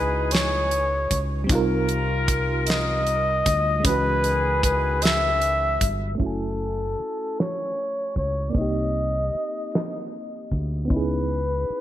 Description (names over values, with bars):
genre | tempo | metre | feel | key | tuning
slow six-eight R&B | 51 BPM (dotted quarters) | 6/8 | straight | unclear | A4 = 440 Hz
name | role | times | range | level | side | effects
breathy flugelhorn | melody | 0.0-11.8 s | A4 to Fb5 | -25 LUFS | left 1 dB | none
FM electric piano with auto-pan | accompaniment | 0.0-11.8 s | Fb3 to Ab5 | -30 LUFS | right 2 dB | none
dark horn section | stabs | 0.0-5.8 s | Eb3 to Bb4 | -31 LUFS | left 4 dB | ping-pong delay
deep dub fingered electric bass | bass | 0.0-11.7 s | Gb1 to D2 | -26 LUFS | equal | none
damped 70s drum kit | drums | 0.3-11.8 s | crash cymbal, hi-hat, kick drum, snare drum | -24 LUFS | right 1 dB | gated reverb
room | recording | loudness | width
light reverb, small room ambience | bright 1980s-style digital production, low-pass filter | -21 LUFS | side -12 dB against mid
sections
0.0-6.2 A section; 6.2-11.8 B section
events
none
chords
0.0 Dbm11; 1.5 Cm11; 3.8 Dbm11; 6.2 Gbm9; 8.6 Cm9; 10.9 Dbm9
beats
0.32 | 1.49 2.67 | 3.84 5.02 | 6.20 7.37 | 8.55 9.73 | 10.90